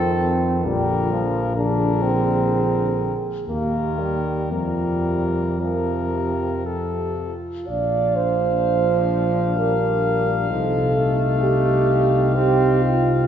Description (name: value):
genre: classical, hymn-like piece for brass band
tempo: 55-66 BPM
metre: 3/4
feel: rubato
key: Bb major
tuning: A4 = 436 Hz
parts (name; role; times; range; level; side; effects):
- warm cornet; melody; 0.0-13.2 s; A4 to F5; -27 LUFS; left 6 dB; none
- warm French horn section; second line; 0.0-13.3 s; F4 to D5; -24 LUFS; right 5 dB; none
- brilliant trombone; accompaniment; 0.0-13.3 s; C3 to C4; -29 LUFS; equal; none
- clear euphonium; accompaniment; 0.0-13.3 s; F3 to Eb4; -26 LUFS; left 1 dB; none
- dark tuba; bass; 0.0-13.2 s; Bb1 to F2; -23 LUFS; equal; none
room: wet concert hall reverb, RT60 2.4 s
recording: heard from further back in the room, nothing above 7.6 kHz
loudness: -18 LUFS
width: side -9 dB against mid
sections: 0.0-7.7 A section; 7.7-13.3 A section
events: none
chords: 0.0 F7; 0.7 Bb; 1.6 Bb7; 3.5 Eb; 4.5 Fsus4; 6.7 F; 7.7 Bb; 10.5 F7/C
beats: 0.65 | 1.56 2.50 3.48 | 4.52 5.61 6.66 | 7.69 8.64 9.57 | 10.50 11.43 12.36